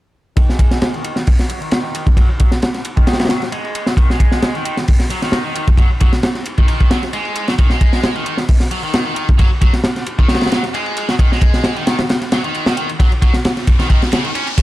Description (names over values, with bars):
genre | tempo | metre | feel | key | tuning
breakbeat, breaks | 133 BPM | 4/4 | swing 54% on 16ths | Eb minor | A4 = 440 Hz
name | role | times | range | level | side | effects
distorted electric guitar | riff | 0.4-14.6 s | Db3 to Db4 | -22 LUFS | equal | overdrive, low-pass filter, digital delay
crunchy breakbeat drum kit | drums | 0.4-14.6 s | hi-hat, kick drum, ride cymbal, snare drum | -13 LUFS | equal | none
electronic hi-hat | drums | 0.4-14.6 s | none | -32 LUFS | right 2 dB | overdrive
riser | sound effects | 13.2-14.6 s | none | -28 LUFS | left 1 dB | none
room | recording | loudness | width
studio reverb | dark, warm production | -13 LUFS | side -16 dB against mid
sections
0.4-14.6 A section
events
filter sweep on distorted electric guitar 0.4-14.6; riser 13.2-14.6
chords
none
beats
| 0.37 0.82 1.27 1.72 | 2.17 2.62 3.08 3.53 | 3.98 4.43 4.88 5.33 | 5.78 6.23 6.68 7.13 | 7.59 8.04 8.49 8.94 | 9.39 9.84 10.29 10.74 | 11.20 11.65 12.10 12.55 | 13.00 13.45 13.90 14.35